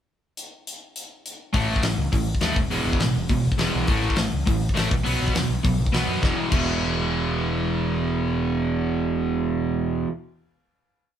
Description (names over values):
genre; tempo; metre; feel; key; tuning
punk rock; 205 BPM; 4/4; straight; unclear; A4 = 440 Hz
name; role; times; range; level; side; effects
big rock drum kit; drums; 0.4-6.6 s; crash cymbal, hi-hat, kick drum, snare drum; -25 LUFS; left 1 dB; none
cranked stack guitar; riff; 1.5-10.1 s; E2 to B3; -23 LUFS; right 2 dB; overdrive
growling picked electric bass; bass; 1.5-10.0 s; E1 to F#2; -28 LUFS; left 1 dB; overdrive
room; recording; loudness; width
moderate studio reverb, RT60 0.7 s; band playing live in one room; -21 LUFS; side -9 dB against mid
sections
0.4-1.5 pickup bar; 1.5-6.2 verse; 6.2-8.6 final chord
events
none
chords
0.4 N.C.; 1.5 A5; 2.6 E5; 3.9 A5; 4.9 B5; 6.2 E5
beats
| 0.38 0.67 0.96 1.25 | 1.55 1.84 2.13 2.42 | 2.72 3.01 3.30 3.59 | 3.88 4.18 4.47 4.76 | 5.05 5.35 5.64 5.93 | 6.23 6.52 6.81 7.11 | 7.40 7.70 7.99 8.29